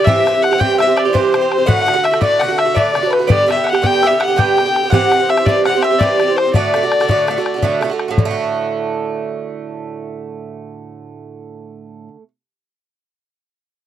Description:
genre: celtic folk, Celtic slip jig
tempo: 111 BPM (dotted quarters)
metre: 9/8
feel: straight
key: D mixolydian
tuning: A4 = 440 Hz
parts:
  - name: dark fiddle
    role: melody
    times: 0.0-7.8 s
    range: B4 to G5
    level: -16 LUFS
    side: left 4 dB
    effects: none
  - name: mandolin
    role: second line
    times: 0.0-7.8 s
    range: B4 to G5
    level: -23 LUFS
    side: right 7 dB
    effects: none
  - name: mellow hollow baroque flute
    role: second line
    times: 0.0-7.8 s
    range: B4 to G5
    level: -22 LUFS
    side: left 6 dB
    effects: none
  - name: Irish bouzouki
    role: accompaniment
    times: 0.0-12.3 s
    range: G2 to G4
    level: -18 LUFS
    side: right 6 dB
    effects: none
  - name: bodhran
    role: percussion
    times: 0.1-8.4 s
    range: none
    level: -17 LUFS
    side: left 2 dB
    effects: none
room: light reverb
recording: dry, close 1970s-style studio recording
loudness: -12 LUFS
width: side -10 dB against mid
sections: 0.0-8.2 A section; 8.2-11.4 B section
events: none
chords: 0.1 C; 1.7 D; 3.3 G; 4.9 C; 6.5 D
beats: | 0.06 0.60 1.14 | 1.68 2.22 2.76 | 3.30 3.84 4.38 | 4.92 5.46 6.00 | 6.54 7.08 7.63 | 8.17 8.71 9.25 | 9.80 10.34 10.88

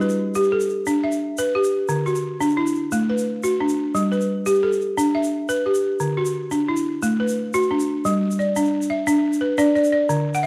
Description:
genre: west african traditional, West African string and xylophone music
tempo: 117 BPM (dotted quarters)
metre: 12/8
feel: straight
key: G major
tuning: A4 = 440 Hz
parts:
  - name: balafon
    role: arpeggios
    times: 0.0-10.5 s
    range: D3 to F#5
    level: -21 LUFS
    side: equal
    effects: none
  - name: tube shaker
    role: percussion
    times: 0.0-10.5 s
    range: none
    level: -38 LUFS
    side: equal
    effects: none
room: moderate recital hall reverb, RT60 1.6 s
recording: dark, warm production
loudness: -21 LUFS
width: mono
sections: 0.0-8.0 A section; 8.0-10.5 B section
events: none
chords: 0.0 G; 1.9 D; 3.9 G; 6.0 D; 8.0 G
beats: 0.35 0.86 1.38 | 1.89 2.40 2.92 3.43 | 3.95 4.46 4.97 5.49 | 6.00 6.51 7.03 7.54 | 8.05 8.56 9.07 9.58 | 10.09

